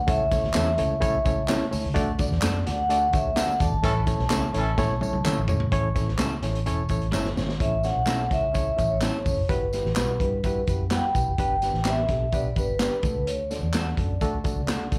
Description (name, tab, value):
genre	uptempo 1960s-style soul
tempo	127 BPM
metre	4/4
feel	straight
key	A mixolydian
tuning	A4 = 437 Hz
part	vibraphone with soft mallets	melody	0.0-14.9 s	B4 to A5	-29 LUFS	equal	plate reverb, slapback echo
part	vintage muted fingered electric bass	bass	0.0-15.0 s	E1 to A2	-30 LUFS	equal	none
part	barky reed electric piano	accompaniment	0.1-15.0 s	A3 to D5	-34 LUFS	equal	overdrive, fast tremolo, plate reverb
part	crunchy breakbeat drum kit	drums	0.1-15.0 s	hi-hat, kick drum, snare drum, toms	-31 LUFS	equal	none
part	tambourine and handclaps	percussion	0.1-15.0 s	none	-38 LUFS	equal	none
part	electric guitar through a small old amp	stabs	0.5-14.8 s	G3 to B4	-34 LUFS	equal	plate reverb, slapback echo
part	mellow horn section	second line	3.8-4.7 s	E3 to A4	-33 LUFS	equal	slapback echo, plate reverb
room	moderate club reverb, RT60 0.8 s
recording	live gig heard through the venue's PA, club reverb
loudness	-25 LUFS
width	mono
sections	0.0-5.7 A section; 5.7-7.6 B section; 7.6-15.0 C section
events	band accent 3.8-5.7; drum fill 4.8-5.7, 7.1-7.6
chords	0.1 A/C#; 2.0 D; 3.8 A; 9.5 Emadd9/G; 11.4 G; 13.0 D